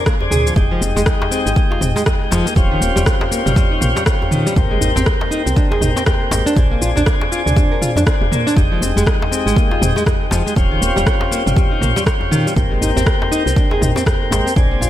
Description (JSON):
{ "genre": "afro house", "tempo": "120 BPM", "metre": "4/4", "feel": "swing 60% on 16ths", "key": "unclear", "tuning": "A4 = 440 Hz", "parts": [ { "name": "nylon-string guitar", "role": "arpeggios", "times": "0.0-14.9 s", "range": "Eb3 to Bb4", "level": "-21 LUFS", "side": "right 1 dB", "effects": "sidechain pumping, ping-pong delay" }, { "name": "tonewheel organ", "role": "stabs", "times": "0.0-14.9 s", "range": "Ab3 to Ab4", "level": "-21 LUFS", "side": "left 2 dB", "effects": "slow rotary speaker, sidechain pumping, ping-pong delay" }, { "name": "deep house drum kit", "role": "drums", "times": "0.1-14.9 s", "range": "rim click, shaker, toms", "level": "-22 LUFS", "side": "equal", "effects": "overdrive" }, { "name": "electronic kick drum", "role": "drums", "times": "0.1-14.7 s", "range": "none", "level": "-16 LUFS", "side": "equal", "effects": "overdrive" }, { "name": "djembe", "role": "percussion", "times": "0.2-14.9 s", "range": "none", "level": "-25 LUFS", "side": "left 1 dB", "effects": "none" }, { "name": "woody FM bass", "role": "bass", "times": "0.3-14.9 s", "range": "Eb1 to F2", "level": "-20 LUFS", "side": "equal", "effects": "sidechain pumping" } ], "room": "light reverb", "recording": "bright 1980s-style digital production", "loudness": "-13 LUFS", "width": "side -12 dB against mid", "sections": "0.0-14.9 A section", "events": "none", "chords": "0.0 Bb9; 0.6 Fm9; 2.6 Eb13; 4.6 Abmaj7; 6.6 Bb9; 8.6 Fm9; 10.6 Eb13; 12.6 Abmaj7" }